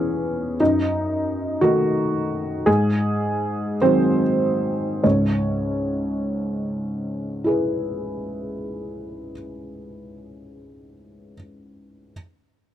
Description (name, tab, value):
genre	neoclassical minimalist piano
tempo	47-62 BPM (dotted quarters)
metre	6/8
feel	rubato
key	C# minor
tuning	A4 = 440 Hz
part	felt-muted upright piano	solo	0.0-12.1 s	C#2 to C#5	-20 LUFS	equal	none
room	small room ambience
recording	dry, close 1970s-style studio recording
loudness	-20 LUFS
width	side -11 dB against mid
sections	0.0-5.0 A section; 5.0-9.9 B section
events	slowing down 0.0-5.0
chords	0.0 C#m7/E; 0.6 D#dim/F#; 2.7 G#7; 5.0 C#m7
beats	| 0.60 1.61 | 2.67 3.81 | 5.04 6.25 | 7.45 8.65